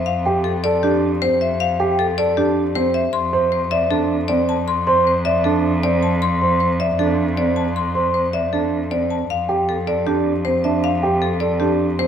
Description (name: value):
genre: classical, minimalist pattern music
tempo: 156 BPM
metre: 4/4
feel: straight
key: F major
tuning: A4 = 441 Hz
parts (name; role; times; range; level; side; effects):
- marimba with hard mallets; melody; 0.0-12.1 s; G4 to C6; -21 LUFS; left 7 dB; none
- rich cello; bass; 0.0-12.1 s; F2; -23 LUFS; right 1 dB; none
- dark grand piano; arpeggios; 0.3-12.1 s; C4 to D5; -21 LUFS; right 6 dB; none
- large celesta; arpeggios; 0.3-11.3 s; G5 to C6; -24 LUFS; left 3 dB; none
room: moderate scoring stage reverb, RT60 1.6 s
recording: none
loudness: -16 LUFS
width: side -8 dB against mid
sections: 0.0-12.1 A section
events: none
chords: 0.0 Fadd9; 3.1 Am/F; 9.3 Fadd9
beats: | 0.07 0.45 0.83 1.22 | 1.60 1.99 2.37 2.76 | 3.14 3.53 3.91 4.30 | 4.68 5.07 5.45 5.83 | 6.22 6.60 6.99 7.37 | 7.76 8.14 8.53 8.91 | 9.30 9.68 10.07 10.45 | 10.84 11.22 11.60 11.99